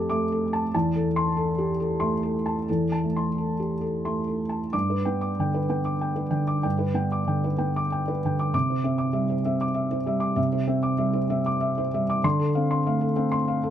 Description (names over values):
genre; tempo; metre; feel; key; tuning
neoclassical minimalist piano; 86-99 BPM; 3/4; rubato; unclear; A4 = 441 Hz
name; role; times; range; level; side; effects
felt-muted upright piano; solo; 0.0-13.7 s; E2 to D6; -23 LUFS; equal; none
room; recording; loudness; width
little or no reverb; close, detailed microphones; -23 LUFS; side -10 dB against mid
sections
0.0-4.7 A section; 4.7-13.7 B section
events
none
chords
0.0 Dm/F; 0.7 Am/E; 4.7 G; 8.5 Cadd9; 12.2 Dm7